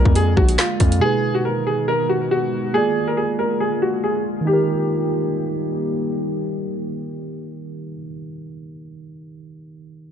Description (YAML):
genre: hip hop, drill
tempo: 139 BPM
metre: 4/4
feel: half-time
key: unclear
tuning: A4 = 443 Hz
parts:
  - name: clear upright piano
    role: melody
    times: 0.0-5.7 s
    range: F4 to Bb4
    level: -21 LUFS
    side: equal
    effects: low-pass filter, dub echo
  - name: mellow tine electric piano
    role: accompaniment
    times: 0.0-10.1 s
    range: B2 to D5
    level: -26 LUFS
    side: right 5 dB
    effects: auto-pan, low-pass filter
  - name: deep dark ambient pad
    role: sustained chords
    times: 0.0-7.9 s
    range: D3 to G4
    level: -26 LUFS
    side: left 3 dB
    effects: chorus, built-in reverb, low-pass filter
  - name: distorted 808-style bass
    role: bass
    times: 0.0-1.0 s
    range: Bb1 to F2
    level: -18 LUFS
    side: equal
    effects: distortion
  - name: drill drum kit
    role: drums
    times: 0.1-1.0 s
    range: handclaps, hi-hat, kick drum, snare drum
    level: -17 LUFS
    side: equal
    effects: none
room: light reverb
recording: echo-heavy mix, nothing above 10.6 kHz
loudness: -18 LUFS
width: side -8 dB against mid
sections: 0.0-4.5 A section; 4.5-7.9 B section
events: filter sweep 0.0-4.5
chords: 0.0 Bb7; 1.0 B6; 2.7 Bb7; 4.5 Eb